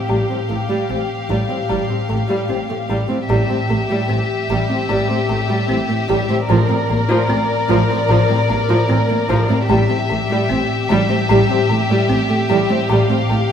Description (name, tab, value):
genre	cinematic, suspense film score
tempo	75 BPM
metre	4/4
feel	straight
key	A phrygian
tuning	A4 = 439 Hz
part	warm chamber violin section	melody	0.0-13.5 s	D5 to F5	-24 LUFS	left 4 dB	none
part	warm chamber violin section	second line	0.0-13.5 s	G4 to Bb4	-23 LUFS	left 2 dB	none
part	warm chamber viola section	accompaniment	0.1-13.5 s	F3 to C4	-20 LUFS	right 1 dB	none
part	folk marimba with hard mallets	riff	0.1-13.5 s	A2 to A3	-21 LUFS	left 2 dB	none
part	dark chamber cello section	bass	0.1-13.5 s	A2	-25 LUFS	right 4 dB	none
part	warm chamber double bass section	bass	0.1-13.4 s	A1	-25 LUFS	right 3 dB	none
room	wet scoring stage reverb, RT60 1.5 s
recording	none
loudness	-15 LUFS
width	side -8 dB against mid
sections	0.0-13.5 A section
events	none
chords	0.1 Fadd9/A; 6.5 Bbadd9/A; 9.7 Am7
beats	| 0.09 0.89 1.69 2.49 | 3.29 4.09 4.89 5.69 | 6.49 7.29 8.09 8.89 | 9.69 10.49 11.29 12.09 | 12.89